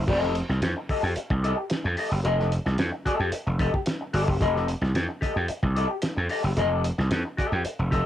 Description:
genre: funk.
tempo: 111 BPM.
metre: 4/4.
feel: straight.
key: unclear.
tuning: A4 = 440 Hz.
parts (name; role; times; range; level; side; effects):
gritty slap bass; bass; 0.0-8.0 s; F1 to F2; -25 LUFS; equal; overdrive.
electric guitar at the edge of break-up; accompaniment; 0.1-8.1 s; G4 to Eb5; -28 LUFS; left 3 dB; wah, cassette tape.
cloth-damped thuddy drum kit; drums; 0.1-8.1 s; crash cymbal, hi-hat, kick drum, snare drum; -30 LUFS; equal; cassette tape.
room: light reverb.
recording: home recording on cassette.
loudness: -23 LUFS.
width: side -12 dB against mid.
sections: 0.1-8.1 A section.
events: none.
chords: 0.1 F9.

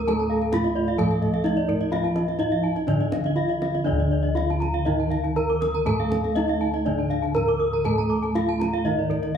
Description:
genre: Balinese gamelan.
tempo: 120-134 BPM.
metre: 4/4.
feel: straight.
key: D pelog.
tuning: A4 = 441 Hz.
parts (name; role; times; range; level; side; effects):
gamelan-type bronze metallophone; melody; 0.0-9.4 s; D4 to Bb4-20c; -26 LUFS; right 1 dB; none.
gamelan-type bronze metallophone; accompaniment; 0.0-9.4 s; D3 to A3-30c; -28 LUFS; right 3 dB; none.
gamelan-type bronze metallophone; arpeggios; 0.0-9.1 s; D5 to D6; -32 LUFS; right 6 dB; none.
gamelan-type bossed gongs; bass; 0.0-9.4 s; D2 to A4-30c; -28 LUFS; left 1 dB; none.
gamelan-type bronze metallophone; arpeggios; 0.1-9.4 s; Bb4-20c to Eb6+20c; -29 LUFS; left 5 dB; none.
kendang; percussion; 0.1-9.4 s; none; -32 LUFS; equal; none.
room: wet large studio reverb, RT60 1.4 s.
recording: band playing live in one room.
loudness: -21 LUFS.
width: side -8 dB against mid.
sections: 0.0-3.9 A section; 3.9-9.4 B section.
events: none.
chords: none.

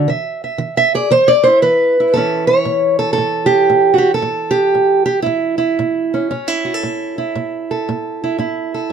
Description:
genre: acoustic country blues, solo or duo.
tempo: 116 BPM.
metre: 4/4.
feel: swing 68% on 8ths.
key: A mixolydian.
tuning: A4 = 440 Hz.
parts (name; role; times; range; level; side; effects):
fingerpicked old ladder-braced acoustic guitar; solo; 0.0-8.9 s; A2 to E5; -13 LUFS; right 2 dB; none.
room: light reverb.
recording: none.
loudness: -13 LUFS.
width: side -7 dB against mid.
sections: 0.0-2.2 A section; 2.2-8.9 B section.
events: steel-string acoustic guitar solo 0.0-2.2.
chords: 0.1 E5; 2.2 A.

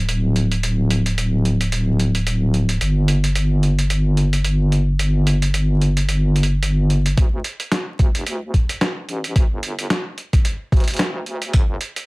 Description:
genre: glitch hop.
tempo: 110 BPM.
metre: 4/4.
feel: swing 57% on 16ths.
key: unclear.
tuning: A4 = 439 Hz.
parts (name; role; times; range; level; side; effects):
wobble bass; bass; 0.0-11.8 s; D1 to D2; -18 LUFS; equal; chorus, high-pass filter.
boom bap sampler-style drum kit; drums; 0.1-12.1 s; hi-hat, snare drum; -24 LUFS; right 1 dB; studio ambience.
electronic kick drum; drums; 7.2-11.7 s; none; -16 LUFS; equal; studio ambience.
room: little or no reverb.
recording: vinyl crackle.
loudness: -16 LUFS.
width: side -26 dB against mid.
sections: 0.0-7.2 A section; 7.2-12.1 B section.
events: build-up 7.2-12.1.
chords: none.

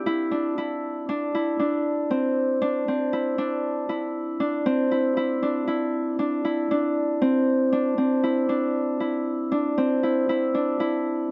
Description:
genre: progressive instrumental, progressive.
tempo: 118 BPM.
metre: 5/4.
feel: straight.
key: C major.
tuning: A4 = 440 Hz.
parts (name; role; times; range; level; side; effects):
Celtic harp; solo; 0.0-11.3 s; C4 to G4; -24 LUFS; equal; none.
room: light reverb.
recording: none.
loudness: -25 LUFS.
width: mono.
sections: 0.1-11.3 A section.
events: none.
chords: 0.1 Cadd9.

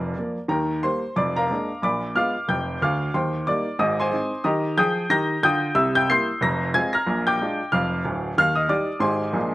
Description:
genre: jazz, stride piano.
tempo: 183 BPM.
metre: 4/4.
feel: swing 59% on 8ths.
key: Eb major.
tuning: A4 = 441 Hz.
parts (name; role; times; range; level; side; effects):
clear upright piano; solo; 0.0-9.5 s; D1 to C7; -20 LUFS; equal; slapback echo.
room: light reverb.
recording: recorded outdoors, with no room sound, nothing above 10.5 kHz.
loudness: -20 LUFS.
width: side -17 dB against mid.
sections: 0.5-9.5 A section.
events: none.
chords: 0.0 Bb; 0.5 Eb; 1.2 Bb7/F; 1.8 Bb7b9; 3.1 Eb; 3.8 Ab; 4.5 Eb; 5.8 C7; 6.4 Fm; 7.1 Bb7; 8.4 Eb; 9.0 Abmaj7.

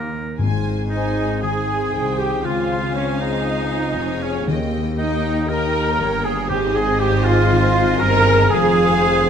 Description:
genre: classical, dramatic, fast romantic movement for symphony orchestra.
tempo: 118 BPM.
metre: 4/4.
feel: straight.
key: Ab major.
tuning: A4 = 440 Hz.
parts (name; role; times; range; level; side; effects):
clear oboe; second line; 0.0-9.3 s; Db4 to Bb4; -27 LUFS; right 1 dB; none.
warm symphonic viola section; accompaniment; 0.0-9.3 s; Eb3 to Bb4; -24 LUFS; right 1 dB; none.
dark French horn section; sustained chords; 0.0-9.3 s; Bb3 to G4; -28 LUFS; left 4 dB; none.
concert harp; arpeggios; 0.0-9.3 s; F2 to Eb5; -26 LUFS; left 9 dB; none.
clear chamber double bass section; bass; 0.0-9.3 s; F1 to Eb2; -25 LUFS; right 3 dB; none.
rich symphonic cello section; bass; 0.0-9.3 s; C2 to Ab2; -25 LUFS; right 3 dB; none.
rich symphonic violin section; melody; 0.4-9.3 s; G5 to Ab5; -33 LUFS; left 5 dB; none.
rich symphonic violin section; second line; 0.4-9.3 s; C5 to Ab5; -29 LUFS; left 3 dB; none.
timpani; percussion; 0.4-1.1, 4.5-7.2 s; Ab2 to Eb3; -27 LUFS; left 2 dB; none.
dark clarinet; second line; 0.9-9.3 s; Db4 to Bb4; -28 LUFS; left 2 dB; none.
mellow flute section; second line; 0.9-9.3 s; Db5 to Bb5; -28 LUFS; equal; none.
warm trumpet; stabs; 0.9-9.3 s; Db4 to Bb4; -24 LUFS; right 2 dB; none.
room: moderate scoring stage reverb, RT60 2.0 s.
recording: none.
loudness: -16 LUFS.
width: side -8 dB against mid.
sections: 0.4-9.3 A section.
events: none.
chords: 0.4 Ab; 2.5 Dbmaj7; 4.5 Eb; 6.5 Ab; 8.5 Fm.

